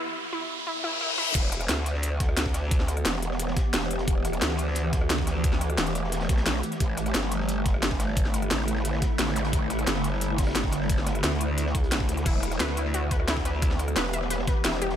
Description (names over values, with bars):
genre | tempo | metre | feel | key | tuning
dark technical drum and bass | 176 BPM | 4/4 | straight | E minor | A4 = 437 Hz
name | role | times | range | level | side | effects
wide unison pluck | arpeggios | 0.0-1.3, 12.3-14.9 s | E4 to E5 | -32 LUFS | left 1 dB | vintage 12-bit sampler grit, sidechain pumping, ping-pong delay
riser, reverse cymbal and zap | sound effects | 0.0-1.4, 9.4 s | none | -30 LUFS | left 2 dB | none
swarming drone | sustained chords | 1.6-15.0 s | D3 to G4 | -32 LUFS | right 1 dB | built-in reverb, sidechain pumping
growl bass | bass | 1.4-15.0 s | E1 to D2 | -28 LUFS | equal | chorus, overdrive
crunchy breakbeat drum kit | drums | 1.4-15.0 s | hi-hat, snare drum | -39 LUFS | equal | high-pass filter on hats, small room ambience, high-pass filter on snare, high-pass filter on room
drum and bass drum kit | drums | 1.4-14.9 s | crash cymbal, hi-hat, rim click, snare drum | -29 LUFS | equal | small room ambience
electronic kick drum | drums | 1.4-14.5 s | none | -26 LUFS | equal | overdrive, high-pass filter on kick, small room ambience
room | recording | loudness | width
little or no reverb | high-pass filter | -24 LUFS | side -10 dB against mid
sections
0.0-1.4 A section; 1.4-15.0 B section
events
break 0.0-1.4; build-up 0.0-1.4; riser 0.0-1.4; filter sweep on synth arpeggio sound 0.0-1.4; filter sweep 0.0-1.4; reverse cymbal 0.7-1.4; drop 1.4-15.0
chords
0.0 N.C.; 1.4 Em; 6.8 Asus4; 12.3 Em